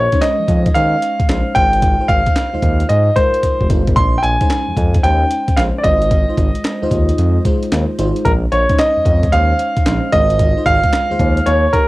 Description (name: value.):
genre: R&B, new jack swing.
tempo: 112 BPM.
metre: 4/4.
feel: swing 66% on 16ths.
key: unclear.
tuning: A4 = 440 Hz.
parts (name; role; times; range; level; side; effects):
clear concert grand piano; melody; 0.0-11.9 s; Bb4 to C6; -16 LUFS; equal; cassette tape.
smooth synth bass; bass; 0.0-11.7 s; F1 to Ab2; -17 LUFS; equal; transformer saturation.
FM electric piano with soft pad layer; accompaniment; 0.1-11.9 s; Ab3 to Db5; -22 LUFS; equal; chorus, phaser, cassette tape.
breakbeat sampler-style drum kit; drums; 0.1-11.9 s; handclaps, hi-hat, kick drum, snare drum; -17 LUFS; equal; cassette tape.
room: little or no reverb.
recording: home recording on cassette.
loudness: -12 LUFS.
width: side -19 dB against mid.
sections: 0.0-11.9 A section.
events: drum fill 3.4-4.0.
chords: 0.0 Bbm11; 1.6 Ab6; 4.0 Bbm11; 5.8 Ab6; 8.3 Bbm11; 10.1 Ab6.